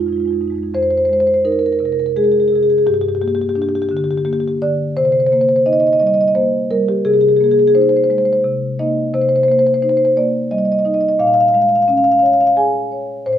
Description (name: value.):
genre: classical, contemporary piece for solo marimba.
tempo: 86 BPM.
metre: 3/4.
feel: rubato.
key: F minor.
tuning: A4 = 440 Hz.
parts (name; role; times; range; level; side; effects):
marimba with soft mallets; solo; 0.0-13.4 s; F2 to Ab5; -13 LUFS; equal; none.
room: light reverb.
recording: none.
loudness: -13 LUFS.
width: side -10 dB against mid.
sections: 0.7-13.4 A section.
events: none.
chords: 0.0 Fm7; 2.9 Gm; 5.0 Cm7; 7.1 Abadd9/C; 8.4 Cm7; 11.2 Bbm7.